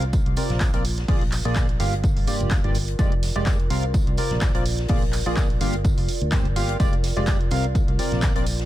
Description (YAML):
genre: piano house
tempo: 126 BPM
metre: 4/4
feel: swing 55% on 16ths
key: unclear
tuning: A4 = 441 Hz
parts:
  - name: percussive organ stab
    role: riff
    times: 0.0-8.5 s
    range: G2 to F5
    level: -27 LUFS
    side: equal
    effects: analog chorus, sidechain pumping, ping-pong delay
  - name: fingered electric bass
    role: bass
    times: 0.0-8.7 s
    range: F1 to D2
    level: -26 LUFS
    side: equal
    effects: sidechain pumping
  - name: punchy analog drum machine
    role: drums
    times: 0.0-8.7 s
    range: handclaps, hi-hat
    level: -32 LUFS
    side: right 1 dB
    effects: studio reverb
  - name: warbly tape-like pad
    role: texture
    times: 0.1-8.7 s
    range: F4 to D5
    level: -34 LUFS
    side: right 2 dB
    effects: chorus, built-in reverb, sidechain pumping
  - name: electronic kick drum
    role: drums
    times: 0.1-8.3 s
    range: none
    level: -22 LUFS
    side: equal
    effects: overdrive, studio reverb
  - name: open jazz drum kit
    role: drums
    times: 0.1-8.7 s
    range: hi-hat, snare drum, tambourine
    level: -40 LUFS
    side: left 1 dB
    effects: sidechain pumping on hats, high-pass filter on hats, studio reverb, high-pass filter on snare, sidechain pumping on perc, high-pass filter on perc, high-pass filter on room
room: small room reverb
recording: none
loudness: -20 LUFS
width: side -14 dB against mid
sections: 0.0-8.7 A section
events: none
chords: 0.0 C9sus4; 0.8 Bb7; 1.8 Gm7; 3.0 Fm69; 3.7 C9sus4; 4.7 Bb7; 5.6 Gm7; 6.8 Fm69; 7.5 C9sus4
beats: 0.13 0.61 | 1.08 1.56 2.04 2.51 | 2.99 3.46 3.94 4.42 | 4.89 5.37 5.85 6.32 | 6.80 7.28 7.75 8.23